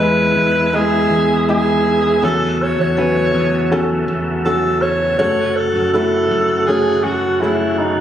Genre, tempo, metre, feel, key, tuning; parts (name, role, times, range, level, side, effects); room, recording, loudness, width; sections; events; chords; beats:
pop; 81 BPM; 4/4; straight; A4 = 440 Hz
breathy alto saxophone; melody; 0.0-8.0 s; D#4 to C#5; -17 LUFS; right 1 dB
felt-muted upright piano; accompaniment; 0.0-8.0 s; E3 to D#5; -19 LUFS; left 1 dB
tonewheel organ; sustained chords; 0.0-8.0 s; C#3 to F#4; -23 LUFS; equal; chorus vibrato, fast rotary speaker
fingered electric bass; bass; 0.0-8.0 s; E2 to F#2; -22 LUFS; equal
light reverb, small room reverb; recorded on a phone in the room, studio reverb, compression; -14 LUFS; side -10 dB against mid
0.0-8.0 A section
0.0 Emaj7; 2.2 A6/E; 5.2 F#madd9
0.73 1.48 | 2.23 2.97 3.71 4.45 | 5.19 5.94 6.68 7.42